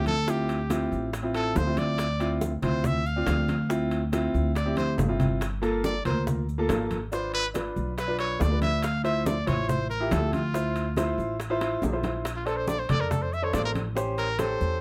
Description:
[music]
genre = Afro-Cuban jazz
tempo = 140 BPM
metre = 4/4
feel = straight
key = D minor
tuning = A4 = 440 Hz
[part]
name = clear trumpet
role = melody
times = 0.0-14.8 s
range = F4 to F5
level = -33 LUFS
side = equal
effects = none
[part]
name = warm upright piano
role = accompaniment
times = 0.0-14.8 s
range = Bb3 to D5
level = -32 LUFS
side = equal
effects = none
[part]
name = upright bass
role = bass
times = 0.0-14.8 s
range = G1 to F2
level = -31 LUFS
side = equal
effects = none
[part]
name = congas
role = percussion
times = 0.1-14.6 s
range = none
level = -34 LUFS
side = equal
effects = none
[part]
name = maracas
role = percussion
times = 0.1-14.8 s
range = none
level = -51 LUFS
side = equal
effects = none
[part]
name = timbales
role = percussion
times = 0.1-14.6 s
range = none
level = -40 LUFS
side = equal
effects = none
[part]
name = bongos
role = percussion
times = 0.3-14.8 s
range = none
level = -38 LUFS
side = equal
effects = none
[sound]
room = moderate club reverb, RT60 0.6 s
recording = none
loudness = -27 LUFS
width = mono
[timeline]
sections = 0.0-14.8 A section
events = trumpet solo 0.0-14.8; drum fill 4.8-5.4, 11.6-12.3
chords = 0.0 Dm9; 5.4 Gm9; 7.1 G#dim7; 8.8 Dm9; 12.3 Bbmaj7; 14.0 A7#9

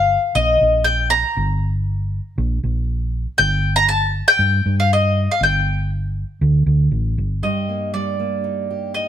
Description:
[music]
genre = indie folk with a building arrangement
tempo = 119 BPM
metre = 4/4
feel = straight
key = unclear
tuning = A4 = 440 Hz
[part]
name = mandolin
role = melody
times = 0.0-9.1 s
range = D5 to Bb5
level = -17 LUFS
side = left 1 dB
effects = none
[part]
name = hollow-body short-scale fingered electric bass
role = bass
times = 0.0-7.4 s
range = G1 to G2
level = -18 LUFS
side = equal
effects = none
[part]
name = fingerpicked steel-string acoustic guitar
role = accompaniment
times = 7.4-9.1 s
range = G2 to G4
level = -25 LUFS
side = right 2 dB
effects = none
[sound]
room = moderate stone room reverb, RT60 1.1 s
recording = band playing live in one room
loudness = -16 LUFS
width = side -10 dB against mid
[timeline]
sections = 0.0-7.4 A section; 7.4-9.1 B section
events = none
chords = 0.0 Eb/G (rootless); 3.4 N.C.; 5.4 G5; 7.4 Eb/G

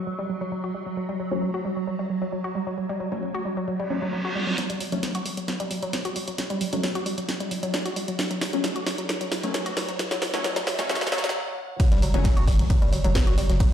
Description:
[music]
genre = driving peak-time techno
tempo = 133 BPM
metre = 4/4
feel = straight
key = F# minor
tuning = A4 = 440 Hz
[part]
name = swarming drone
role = drone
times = 0.0-4.6, 13.4-13.7 s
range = F#3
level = -33 LUFS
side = right 2 dB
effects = built-in reverb, phaser, sidechain pumping
[part]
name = downlifter, reverse cymbal and riser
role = sound effects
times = 3.9-11.3 s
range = none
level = -36 LUFS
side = right 1 dB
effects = none
[part]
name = woody wave-folded pluck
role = riff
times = 0.1-13.6 s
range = F#3 to F#4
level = -29 LUFS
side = equal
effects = chorus, sidechain pumping, tape echo
[part]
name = rave stab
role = stabs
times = 1.3-12.2 s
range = F#3 to C#4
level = -32 LUFS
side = left 2 dB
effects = chorus, built-in reverb, sidechain pumping, tape echo
[part]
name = techno drum kit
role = drums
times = 4.6-13.7 s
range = hi-hat, ride cymbal, snare drum, toms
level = -29 LUFS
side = equal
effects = none
[part]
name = electronic kick drum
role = drums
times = 11.8-13.7 s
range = none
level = -20 LUFS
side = equal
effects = none
[part]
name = tight funk drum kit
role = drums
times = 11.8-13.7 s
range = hi-hat, snare drum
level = -41 LUFS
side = left 2 dB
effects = sidechain pumping on hats, high-pass filter on hats, high-pass filter on snare, high-pass filter on room
[part]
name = saturated sub bass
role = bass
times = 12.0-13.6 s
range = F#1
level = -24 LUFS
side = equal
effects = overdrive, sidechain pumping, low-pass filter
[sound]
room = moderate digital room reverb, RT60 1.2 s, digital ambience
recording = played on a big sound system in a bare room, large studio reverb, high-pass filter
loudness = -23 LUFS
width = side -10 dB against mid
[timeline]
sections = 0.0-4.6 A section; 4.6-11.8 B section; 11.8-13.7 C section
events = filter sweep on synth arpeggio sound 0.0-4.6, 4.6-11.8; reverse cymbal 3.9-4.6; build-up 4.6-11.8; drum fill 4.6-11.3; riser 4.6-11.3; filter sweep on synth stab 4.6-11.8; stop 11.3-11.8; drop 11.8-13.7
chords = 0.0 N.C.; 4.6 F#m; 11.8 N.C.

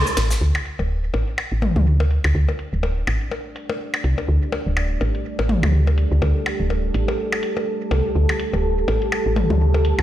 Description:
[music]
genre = minimal techno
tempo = 124 BPM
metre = 4/4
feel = swing 57% on 16ths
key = unclear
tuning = A4 = 440 Hz
[part]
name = woody FM bass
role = bass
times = 0.0-10.0 s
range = D1 to D2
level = -18 LUFS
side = equal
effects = none
[part]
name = electronic shaker and hi-hat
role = drums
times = 0.1-10.0 s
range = none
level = -27 LUFS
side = right 1 dB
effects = low-pass filter on perc, low-pass filter on snare, low-pass filter on hats
[part]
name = electronic percussion blips and toms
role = percussion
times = 0.2-10.0 s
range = none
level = -25 LUFS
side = left 2 dB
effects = ping-pong delay
[part]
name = deep dark ambient pad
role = texture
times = 2.5-10.0 s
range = G4 to A5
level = -25 LUFS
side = right 1 dB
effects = chorus, built-in reverb
[sound]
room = light reverb, studio ambience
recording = played on a big sound system in a bare room, stone room reverb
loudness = -18 LUFS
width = side -12 dB against mid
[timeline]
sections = 0.4-10.0 A section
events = band accent 0.0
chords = 0.4 Dsus4

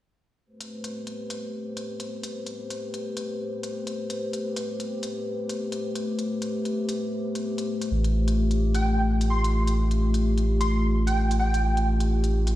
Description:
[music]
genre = future garage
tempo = 129 BPM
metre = 4/4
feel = swing 60% on 16ths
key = A minor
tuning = A4 = 440 Hz
[part]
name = dark analog pad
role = sustained chords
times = 0.6-12.6 s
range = A3 to C5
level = -28 LUFS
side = left 2 dB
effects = lush chorus
[part]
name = electronic hi-hat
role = drums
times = 0.6-12.5 s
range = none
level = -38 LUFS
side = left 1 dB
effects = none
[part]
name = warm sub bass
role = bass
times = 7.9-12.6 s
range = A1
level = -23 LUFS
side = equal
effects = tube saturation
[part]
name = plucky unison lead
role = melody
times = 8.7-11.9 s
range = G5 to C6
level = -30 LUFS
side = right 1 dB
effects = ensemble chorus, tape echo
[sound]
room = light reverb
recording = played on a big sound system in a bare room, cassette tape, stone room reverb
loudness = -24 LUFS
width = side -15 dB against mid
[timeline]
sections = 0.5-12.6 A section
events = none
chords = 0.5 Am9; 7.9 Fsus2/A

